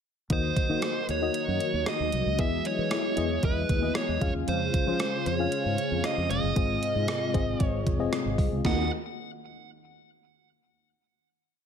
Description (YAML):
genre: 1980s-style pop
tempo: 115 BPM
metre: 4/4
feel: straight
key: Eb dorian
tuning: A4 = 438 Hz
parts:
  - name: dark smooth lead guitar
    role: melody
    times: 0.3-8.9 s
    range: B4 to Gb5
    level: -31 LUFS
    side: right 4 dB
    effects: overdrive, ping-pong delay
  - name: FM electric piano with tremolo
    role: accompaniment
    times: 0.3-8.9 s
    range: Eb2 to F5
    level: -31 LUFS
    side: left 6 dB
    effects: none
  - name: ensemble organ-string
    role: sustained chords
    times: 0.3-8.9 s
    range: C3 to Gb4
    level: -34 LUFS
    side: equal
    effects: phaser, ensemble chorus
  - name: fretless electric bass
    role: bass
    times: 0.3-8.9 s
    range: F1 to F3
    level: -31 LUFS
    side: equal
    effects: ensemble chorus
  - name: gated 80s digital drum machine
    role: drums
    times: 0.3-8.8 s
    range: hi-hat, kick drum, rim click, snare drum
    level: -30 LUFS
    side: right 1 dB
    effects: gated reverb, gated reverb snare, overdrive
room: light reverb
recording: none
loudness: -25 LUFS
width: side -7 dB against mid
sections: 0.3-8.6 verse; 8.6-10.7 final chord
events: none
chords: 0.3 Ebm; 2.4 Emaj7; 4.2 Db; 6.6 Ab6; 8.6 Ebm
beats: | 0.30 0.82 1.34 1.87 | 2.39 2.91 3.43 3.95 | 4.47 5.00 5.52 6.04 | 6.56 7.08 7.61 8.13 | 8.65